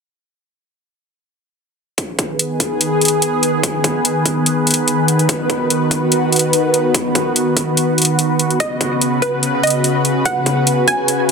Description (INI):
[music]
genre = heavy wobble dubstep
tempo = 145 BPM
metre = 4/4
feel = swing 53% on 16ths, half-time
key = G# minor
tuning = A4 = 440 Hz
[part]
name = lush unison pad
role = sustained chords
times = 2.0-11.3 s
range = C#3 to B4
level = -15 LUFS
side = equal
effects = chorus, phaser, sidechain pumping
[part]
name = electronic hi-hat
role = drums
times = 2.0-11.3 s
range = none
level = -17 LUFS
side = equal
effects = none
[part]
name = electronic kick drum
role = drums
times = 2.0-11.0 s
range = none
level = -23 LUFS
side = equal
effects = high-pass filter on kick, high-pass filter on room
[part]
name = wide unison pluck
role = melody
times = 8.6-11.3 s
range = B4 to G#5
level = -19 LUFS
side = right 1 dB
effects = dub echo
[sound]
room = moderate lush hall reverb, RT60 2.2 s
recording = dense, heavily limited modern master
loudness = -14 LUFS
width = side -5 dB against mid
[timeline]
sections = 2.0-11.3 A section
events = none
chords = 2.0 G#m; 8.6 F#sus4